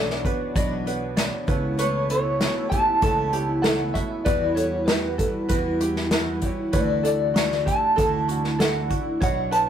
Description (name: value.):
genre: indie folk with a building arrangement.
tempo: 97 BPM.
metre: 4/4.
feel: straight.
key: D major.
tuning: A4 = 439 Hz.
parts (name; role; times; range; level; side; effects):
electric guitar through a small old amp; melody; 0.0-9.7 s; B4 to A5; -24 LUFS; equal; tremolo.
picked twelve-string acoustic guitar; accompaniment; 0.0-9.7 s; E2 to C#5; -30 LUFS; left 1 dB; none.
warm upright piano; accompaniment; 0.0-9.7 s; B1 to F#5; -32 LUFS; right 4 dB; none.
phased analog pad; sustained chords; 0.1-9.7 s; B2 to F#5; -36 LUFS; equal; phaser, chorus.
ukulele; arpeggios; 0.0-9.7 s; F#4 to D5; -30 LUFS; right 3 dB; none.
fingered electric bass; bass; 0.0-9.7 s; B1 to E2; -30 LUFS; right 1 dB; none.
unplugged drum kit; drums; 0.1-9.7 s; hi-hat, kick drum, snare drum; -25 LUFS; equal; none.
room: light reverb.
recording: rough rehearsal-room recording, warm saturation.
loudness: -20 LUFS.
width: side -9 dB against mid.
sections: 0.0-9.7 A section.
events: upright piano fill 0.6-1.8.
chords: 0.0 Bmadd9; 1.5 Aadd9/C#; 4.3 Emadd9; 6.7 Dadd9.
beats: 0.56 1.18 | 1.79 2.41 3.03 3.65 | 4.27 4.89 5.50 6.12 | 6.74 7.36 7.98 8.60 | 9.22.